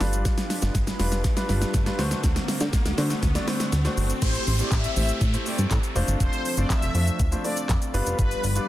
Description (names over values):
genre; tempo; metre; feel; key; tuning
dance-pop; 121 BPM; 4/4; straight; A minor; A4 = 441 Hz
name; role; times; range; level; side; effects
warm concert grand piano; accompaniment; 0.0-8.7 s; G3 to D5; -31 LUFS; equal; sidechain pumping, low-pass filter
chorused pulse-width pad; sustained chords; 0.0-8.7 s; D3 to B4; -33 LUFS; equal; sidechain pumping, low-pass filter
plucky analog bass; bass; 0.0-8.6 s; F1 to D3; -24 LUFS; equal; sidechain pumping
pop drum kit; drums; 0.0-8.7 s; crash cymbal, handclaps, hi-hat, kick drum, shaker, snare drum; -25 LUFS; equal; none
riser and downlifter; sound effects; 0.2-8.2 s; none; -35 LUFS; left 1 dB; none
supersaw pad; melody; 4.2-8.7 s; B4 to E5; -32 LUFS; left 1 dB; phaser
room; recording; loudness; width
digital ambience; dense, heavily limited modern master; -22 LUFS; side -14 dB against mid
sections
0.0-4.2 A section; 4.2-8.7 B section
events
build-up 0.0-4.2; drum fill 0.0-4.2; riser 0.2-4.2; drop 4.2-8.7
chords
0.0 G7; 2.0 D7; 4.2 Am7; 6.0 F6; 7.9 G7